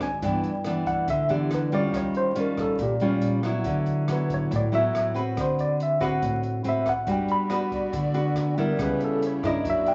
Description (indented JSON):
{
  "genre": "bossa nova",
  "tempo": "140 BPM",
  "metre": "4/4",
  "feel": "straight",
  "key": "D major",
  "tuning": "A4 = 441 Hz",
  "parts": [
    { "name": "tine electric piano", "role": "melody", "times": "0.0-9.9 s", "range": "G4 to B5", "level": "-29 LUFS", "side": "equal", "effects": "medium tremolo" },
    { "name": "nylon-string guitar", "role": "accompaniment", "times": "0.0-9.9 s", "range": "G2 to B4", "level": "-27 LUFS", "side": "equal", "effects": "none" },
    { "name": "upright bass", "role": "bass", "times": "0.0-9.9 s", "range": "G1 to G2", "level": "-39 LUFS", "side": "equal", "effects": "none" },
    { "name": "open jazz drum kit", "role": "drums", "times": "0.0-9.9 s", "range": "hi-hat, kick drum, rim click", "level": "-41 LUFS", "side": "equal", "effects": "none" },
    { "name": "warm studio string section", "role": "sustained chords", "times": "7.0-9.9 s", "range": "A#3 to D5", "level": "-38 LUFS", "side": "equal", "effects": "none" }
  ],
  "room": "moderate large studio reverb, RT60 0.9 s",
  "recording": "vinyl crackle, nothing above 7.7 kHz",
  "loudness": "-25 LUFS",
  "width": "mono",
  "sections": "0.0-9.9 A section",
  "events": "tine electric piano solo 0.0-9.9",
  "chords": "0.2 G6; 1.9 Eb9; 3.6 D69; 5.4 D6; 7.1 Gmaj7; 8.8 C#m7b5"
}